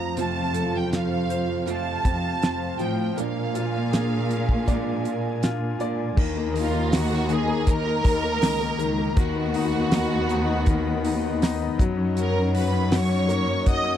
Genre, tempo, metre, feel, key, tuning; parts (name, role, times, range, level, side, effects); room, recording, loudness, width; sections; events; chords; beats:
pop ballad; 80 BPM; 4/4; straight; A4 = 441 Hz
warm studio violin section; melody; 0.0-14.0 s; E#4 to D#6; -28 LUFS; right 3 dB
bright concert grand piano; accompaniment; 0.0-14.0 s; D#3 to F5; -28 LUFS; left 8 dB
airy breathy pad; sustained chords; 0.0-14.0 s; D4 to B5; -33 LUFS; left 2 dB; chorus
nylon-string guitar; arpeggios; 0.0-6.2 s; F2 to F4; -32 LUFS; right 16 dB; tape echo
dark studio cello section; bass; 0.0-14.0 s; C#2 to Bb2; -26 LUFS; equal
damped 70s drum kit; drums; 0.2-13.8 s; crash cymbal, hi-hat, kick drum, snare drum; -23 LUFS; equal
little or no reverb; dry, close 1970s-style studio recording; -21 LUFS; side -10 dB against mid
0.0-6.2 A section; 6.2-14.0 B section
grand piano fill 5.0-6.2
0.0 F; 3.2 Bb7; 6.2 D#m; 9.2 B/D#; 11.8 F#
| 0.17 0.92 1.67 2.42 | 3.17 3.92 4.67 5.42 | 6.17 6.92 7.67 8.42 | 9.17 9.92 10.67 11.42 | 12.17 12.92 13.67